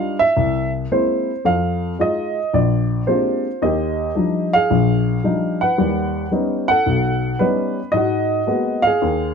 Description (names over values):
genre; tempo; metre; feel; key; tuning
solo jazz; 111 BPM; 4/4; swing 68% on 8ths; Eb major; A4 = 443 Hz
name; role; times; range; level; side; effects
dark upright piano; solo; 0.0-9.3 s; Bb1 to Gb5; -16 LUFS; equal; none
room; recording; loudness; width
light reverb; close, detailed microphones; -16 LUFS; side -6 dB against mid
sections
0.0-3.6 A section; 3.6-9.3 B section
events
none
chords
0.4 C7b13; 1.5 Fm7; 2.5 Bb13; 3.6 Ebmaj9; 5.8 Eb7alt; 7.9 Abm9